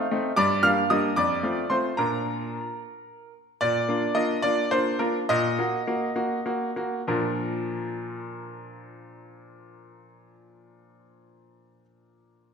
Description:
classical-period piano sonatina; 63-77 BPM (dotted quarters); 6/8; rubato; Bb major; A4 = 440 Hz
clear baby grand piano; solo; 0.0-12.5 s; F2 to F6; -23 LUFS; equal
wet recital hall reverb, RT60 1.5 s; -23 LUFS; side -6 dB against mid
0.0-3.6 A section; 3.6-7.1 B section; 7.1-10.8 C section
slowing down 2.8-7.1
0.4 Gm; 1.2 F; 2.0 Bb; 5.3 Ebm/Bb; 7.1 Bb

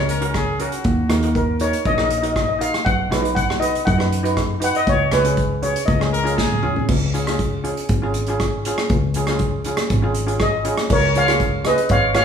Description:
calypso; 119 BPM; 4/4; straight; A4 = 445 Hz
steel pan; melody; 0.0-6.1, 10.4-12.2 s; G#4 to F#5; -20 LUFS; equal
steel pan; accompaniment; 0.0-12.2 s; C#4 to B4; -25 LUFS; right 2 dB
fingered electric bass; bass; 0.0-12.2 s; G#1 to F#2; -22 LUFS; left 1 dB
clear trumpet; second line; 0.1-1.2, 6.1-6.9 s; F#4 to A#4; -25 LUFS; left 1 dB
unplugged drum kit; drums; 0.1-12.2 s; crash cymbal, hi-hat, kick drum, rim click, snare drum, toms; -23 LUFS; equal
moderate large studio reverb, RT60 1.2 s; band playing live in one room, small room ambience; -17 LUFS; side -7 dB against mid
0.0-6.9 A section; 6.9-10.9 B section; 10.9-12.2 C section
steel pan solo 0.0-6.9; drum fill 6.4-6.9
0.0 F#; 0.8 D#m; 2.9 B; 4.9 C#sus4; 5.9 C#

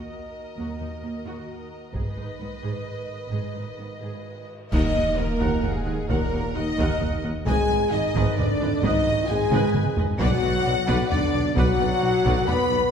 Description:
cinematic, epic orchestral film score; 132 BPM; 3/4; straight; Eb harmonic minor; A4 = 440 Hz
warm symphonic violin section; melody; 0.0-12.9 s; Ab4 to B5; -35 LUFS; left 4 dB
warm symphonic violin section; second line; 0.0-12.9 s; Ab4 to B5; -33 LUFS; left 3 dB
rich symphonic viola section; accompaniment; 0.0-12.8 s; Bb3 to Gb5; -35 LUFS; right 1 dB
mellow French horn section; sustained chords; 0.0-12.9 s; Eb3 to B4; -28 LUFS; left 3 dB
dark symphonic cello section; bass; 0.6-12.8 s; Eb2 to B2; -31 LUFS; right 2 dB
warm symphonic double bass section; bass; 0.6-12.8 s; Ab1 to Eb2; -31 LUFS; right 2 dB
taiko ensemble; drums; 1.9-12.7 s; -28 LUFS; equal
cymbal swell, clash cymbals and concert bass drum; percussion; 1.9-5.6 s; -34 LUFS; equal
mellow hollow silver concert flute; second line; 4.7-12.9 s; Ab4 to B5; -31 LUFS; equal
mellow trombone section; sustained chords; 4.7-12.9 s; Ab2 to B3; -31 LUFS; right 3 dB
mellow tuba; bass; 4.7-12.8 s; Ab1 to Eb2; -31 LUFS; right 2 dB
timpani; percussion; 4.7-5.4 s; Eb3; -34 LUFS; equal
wet scoring stage reverb, RT60 1.8 s; heard from further back in the room; -21 LUFS; side -7 dB against mid
0.0-4.7 A section; 4.7-12.9 B section
band accent 4.7-5.2; drum fill 9.5-10.2
0.0 Ebm; 1.9 Abm; 4.7 Ebm; 7.5 Abm; 10.2 Bm

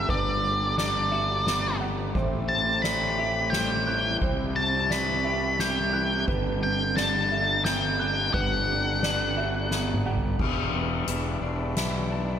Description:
post-rock; 87 BPM; 3/4; straight; A4 = 445 Hz
octave-fuzz lead guitar; melody; 0.0-10.0 s; D5 to B5; -26 LUFS; left 1 dB; distortion, slapback echo
pedal harmonium; sustained chords; 0.0-12.4 s; C3 to E5; -37 LUFS; left 1 dB
felt-muted upright piano; arpeggios; 0.0-10.4 s; B4 to F#6; -36 LUFS; right 6 dB; slapback echo
twelve-string electric guitar; arpeggios; 0.0-12.4 s; E2 to G4; -34 LUFS; left 3 dB; ensemble chorus, slapback echo
fuzz fingered electric bass; bass; 0.0-12.4 s; E1 to C2; -30 LUFS; equal; overdrive
soft-mallet drum kit; drums; 0.1-11.9 s; crash cymbal, hi-hat, kick drum, ride cymbal, snare drum, toms; -30 LUFS; right 1 dB
light reverb, small room ambience; -23 LUFS; side -9 dB against mid
0.0-10.4 A section; 10.4-12.4 B section
drum fill 9.7-10.4
0.0 Gmaj7; 2.2 Am7; 4.2 Cmaj7; 6.3 Gmaj7; 10.4 Em7

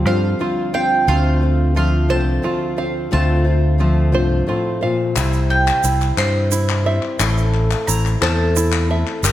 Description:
indie folk with a building arrangement; 59 BPM (dotted quarters); 6/8; straight; A4 = 440 Hz
mandolin; melody; 0.0-8.9 s; F5 to C6; -22 LUFS; right 3 dB; slapback echo
fingerpicked steel-string acoustic guitar; accompaniment; 0.0-5.2 s; D2 to F4; -22 LUFS; left 1 dB
picked old ladder-braced acoustic guitar; accompaniment; 0.0-9.3 s; A2 to C5; -24 LUFS; left 5 dB
open-back banjo; arpeggios; 0.0-9.3 s; E4 to F5; -24 LUFS; right 5 dB
fingered electric bass; bass; 0.0-9.3 s; G1 to G2; -17 LUFS; equal
group handclap; percussion; 5.2-9.3 s; -25 LUFS; left 7 dB
tube shaker; percussion; 5.2-9.3 s; -26 LUFS; right 8 dB
light reverb; -15 LUFS; side -13 dB against mid
0.0-5.2 A section; 5.2-9.3 B section
0.0 Csus4/D; 1.1 F; 5.2 C; 7.2 Am

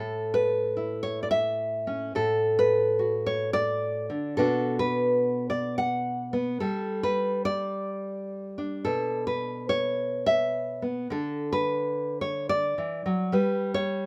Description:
folk, solo fingerstyle acoustic guitar; 108 BPM; 4/4; straight; A4 = 439 Hz
nylon-string guitar; solo; 0.0-14.1 s; A2 to F#5; -27 LUFS; equal
moderate small room reverb, RT60 0.5 s; -27 LUFS; mono
0.0-14.1 A section
0.0 A; 2.2 D/A; 4.4 Bm; 6.6 G5; 8.9 N.C.; 11.1 Dadd9; 13.3 N.C.

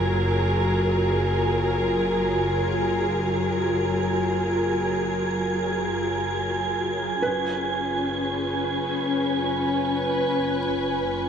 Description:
ambient; free time; F# major; A4 = 440 Hz
dark studio string section; sustained chords; 0.0-11.3 s; F#3 to B4; -24 LUFS; left 1 dB
rich symphonic double bass section; bass; 0.0-11.3 s; F#1; -30 LUFS; equal
wind-like tuned noise texture; texture; 0.0-11.3 s; G#5 to G#6; -29 LUFS; right 4 dB; built-in reverb
felt-muted upright piano; arpeggios; 7.2-11.3 s; B4; -33 LUFS; right 2 dB; diffuse ambient delay
wet cathedral reverb, RT60 5.1 s; in a vast, echoing space; -22 LUFS; side -8 dB against mid
0.0-11.3 A section
fade-out on double bass section 0.0-11.3
0.0 F#maj9; 7.2 C#7/F#

